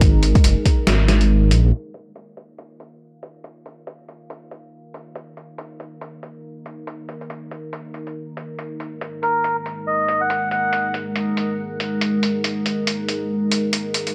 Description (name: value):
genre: deep dubstep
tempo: 140 BPM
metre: 4/4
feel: swing 58% on 16ths, half-time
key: unclear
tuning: A4 = 440 Hz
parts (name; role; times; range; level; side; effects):
- dark analog pad; sustained chords; 0.0-14.1 s; Ab3 to F5; -28 LUFS; equal; chorus
- dark detuned saw bass; bass; 0.0-1.7 s; Gb1 to Bb1; -18 LUFS; equal; tube saturation
- electronic kick drum; drums; 0.0-0.8 s; none; -17 LUFS; equal; overdrive
- trip hop sampler-style drum kit; drums; 0.0-14.1 s; hi-hat, snare drum; -27 LUFS; equal; none
- melodica; melody; 9.2-10.9 s; Bb4 to Gb5; -25 LUFS; equal; dub echo
room: light reverb, digital ambience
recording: low-pass filter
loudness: -20 LUFS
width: mono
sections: 0.0-1.7 A section; 1.7-14.1 B section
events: filter sweep on analog synth pad 1.7-14.1; filter sweep 1.7-14.1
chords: 0.0 Absus2; 1.7 Eb5; 8.6 Absus2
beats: | 0.01 0.44 0.87 1.30 | 1.73 2.16 2.58 3.01 | 3.44 3.87 4.30 4.73 | 5.16 5.58 6.01 6.44 | 6.87 7.30 7.73 8.16 | 8.59 9.01 9.44 9.87 | 10.30 10.73 11.16 11.59 | 12.01 12.44 12.87 13.30 | 13.73